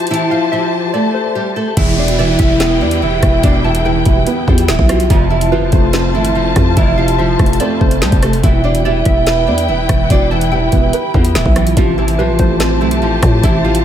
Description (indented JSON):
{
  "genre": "hip hop, drill",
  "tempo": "144 BPM",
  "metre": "4/4",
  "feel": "half-time",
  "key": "E phrygian",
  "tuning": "A4 = 438 Hz",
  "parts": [
    { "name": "nylon-string guitar", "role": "melody", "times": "0.0-13.8 s", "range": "E3 to D5", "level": "-17 LUFS", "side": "equal", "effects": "tape echo" },
    { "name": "warbly dusty pluck", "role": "second line", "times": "0.0-13.8 s", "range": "B4 to A5", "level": "-25 LUFS", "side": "equal", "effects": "chorus, tape echo" },
    { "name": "warm studio string section", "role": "sustained chords", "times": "0.0-13.8 s", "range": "E4 to A5", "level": "-21 LUFS", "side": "left 4 dB", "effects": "none" },
    { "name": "drill drum kit", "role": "drums", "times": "0.0-13.8 s", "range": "crash cymbal, hi-hat, kick drum, rim click, snare drum", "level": "-15 LUFS", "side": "equal", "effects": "none" },
    { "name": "dark baby grand piano", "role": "accompaniment", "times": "1.8-13.8 s", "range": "E2 to B4", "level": "-19 LUFS", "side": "right 4 dB", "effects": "ensemble chorus" },
    { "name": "growling 808-style bass", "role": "bass", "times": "1.8-13.8 s", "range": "D1 to A2", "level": "-16 LUFS", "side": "equal", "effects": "none" },
    { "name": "downlifter", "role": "sound effects", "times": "1.8-5.1 s", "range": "none", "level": "-25 LUFS", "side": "equal", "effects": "none" }
  ],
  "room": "light reverb, digital ambience",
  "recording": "none",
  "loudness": "-11 LUFS",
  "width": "side -10 dB against mid",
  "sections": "0.0-1.8 A section; 1.8-13.8 B section",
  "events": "none",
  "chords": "0.0 Am7; 1.8 Em; 5.1 F; 8.4 Em; 11.8 Am7"
}